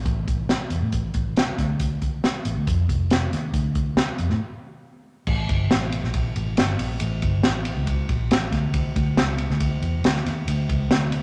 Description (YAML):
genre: uptempo 1960s-style soul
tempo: 138 BPM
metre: 4/4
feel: straight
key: D harmonic minor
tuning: A4 = 437 Hz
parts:
  - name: vintage muted fingered electric bass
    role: bass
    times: 0.0-11.2 s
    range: F1 to A2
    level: -27 LUFS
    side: equal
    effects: none
  - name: swinging big-band drum kit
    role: drums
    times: 0.1-11.2 s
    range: crash cymbal, hi-hat, kick drum, ride cymbal, snare drum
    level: -26 LUFS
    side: equal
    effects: none
room: moderate club reverb, RT60 0.6 s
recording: none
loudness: -23 LUFS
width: mono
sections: 0.0-5.3 A section; 5.3-11.2 B section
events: break 4.4-5.3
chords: none